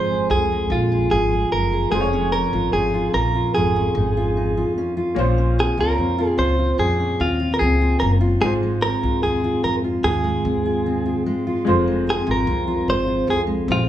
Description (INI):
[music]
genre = acoustic pop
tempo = 74 BPM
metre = 4/4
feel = straight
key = Bb minor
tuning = A4 = 441 Hz
[part]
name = direct-recorded clean electric guitar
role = melody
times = 0.0-13.9 s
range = F4 to C5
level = -22 LUFS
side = right 1 dB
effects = plate reverb
[part]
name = fingerpicked steel-string acoustic guitar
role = accompaniment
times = 0.0-13.9 s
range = F2 to Ab4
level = -22 LUFS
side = equal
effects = none
[part]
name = warm upright piano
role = accompaniment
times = 0.0-13.9 s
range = Ab3 to Db5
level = -28 LUFS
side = left 2 dB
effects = none
[part]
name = upright bass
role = bass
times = 0.0-13.9 s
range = F1 to F2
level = -23 LUFS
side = equal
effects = none
[sound]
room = moderate studio reverb, RT60 0.5 s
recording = small room reverb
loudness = -18 LUFS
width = side -11 dB against mid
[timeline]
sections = 0.0-13.9 A section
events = none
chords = 0.0 Fm; 1.9 Dbadd9/F; 5.2 Bbmadd9; 8.4 Ab6; 11.7 Fm